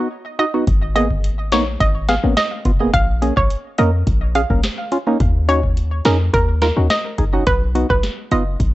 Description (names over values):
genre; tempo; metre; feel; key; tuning
dancehall; 106 BPM; 4/4; straight; Bb phrygian; A4 = 440 Hz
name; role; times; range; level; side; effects
percussive organ stab; accompaniment; 0.0-8.4 s; Bb3 to Bb4; -21 LUFS; right 1 dB; chorus
hollow square pluck; melody; 0.4-8.4 s; Bb4 to F5; -21 LUFS; right 1 dB; chorus, tape echo
warm 808-style bass; bass; 0.7-8.7 s; F1 to F2; -18 LUFS; equal; none
booming analog drum machine; drums; 0.7-8.7 s; hi-hat, kick drum, rim click, snare drum; -20 LUFS; equal; none
room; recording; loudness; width
digital ambience; dry, gritty hardware recording, cassette tape, nothing above 8.0 kHz; -15 LUFS; side -16 dB against mid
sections
0.0-8.7 A section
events
none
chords
0.0 B; 0.7 Abmadd9; 2.9 Bbm7; 5.2 Ebm7; 7.5 B